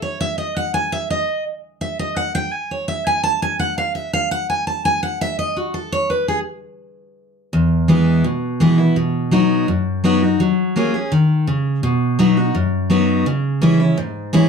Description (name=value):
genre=bluegrass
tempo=168 BPM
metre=4/4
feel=straight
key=E major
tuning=A4 = 438 Hz
part: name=picked steel-string acoustic guitar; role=solo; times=0.0-14.5 s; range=E2 to A5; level=-16 LUFS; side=equal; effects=none
room=moderate studio reverb, RT60 0.6 s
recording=dark, warm production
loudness=-16 LUFS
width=side -6 dB against mid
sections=0.0-7.5 A section; 7.5-14.5 B section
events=steel-string acoustic guitar solo 0.0-7.5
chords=0.0 N.C.; 7.5 E; 9.0 B; 10.4 F#add9; 11.8 B; 13.3 C#m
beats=0.02 | 0.38 0.73 1.09 1.45 | 1.81 2.16 2.52 2.88 | 3.24 3.60 3.95 4.31 | 4.67 5.03 5.38 5.74 | 6.10 6.46 6.82 7.17 | 7.53 7.89 8.25 8.61 | 8.96 9.32 9.68 10.04 | 10.40 10.76 11.11 11.47 | 11.83 12.19 12.55 12.90 | 13.26 13.62 13.98 14.34